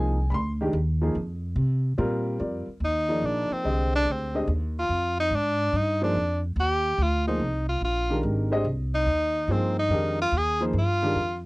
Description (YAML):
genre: modal jazz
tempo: 144 BPM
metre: 3/4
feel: swing 67% on 8ths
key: F dorian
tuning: A4 = 440 Hz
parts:
  - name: warm upright piano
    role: accompaniment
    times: 0.0-11.2 s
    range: D3 to C6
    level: -28 LUFS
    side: equal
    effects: none
  - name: upright bass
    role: bass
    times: 0.0-11.5 s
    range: Ab1 to C3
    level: -27 LUFS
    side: equal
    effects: none
  - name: clear tenor saxophone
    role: melody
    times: 2.8-11.4 s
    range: C4 to Ab4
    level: -25 LUFS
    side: equal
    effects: cassette tape
room: light reverb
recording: home recording on cassette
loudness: -23 LUFS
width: side -23 dB against mid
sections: 0.0-2.4 A section; 2.4-11.5 A section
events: tenor saxophone solo 2.4-11.5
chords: 0.0 Fm11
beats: 0.32 0.73 | 1.15 1.57 1.98 | 2.40 2.82 3.23 | 3.65 4.07 4.48 | 4.90 5.32 5.73 | 6.15 6.57 6.98 | 7.40 7.82 8.24 | 8.65 9.07 9.49 | 9.91 10.32 10.74 | 11.16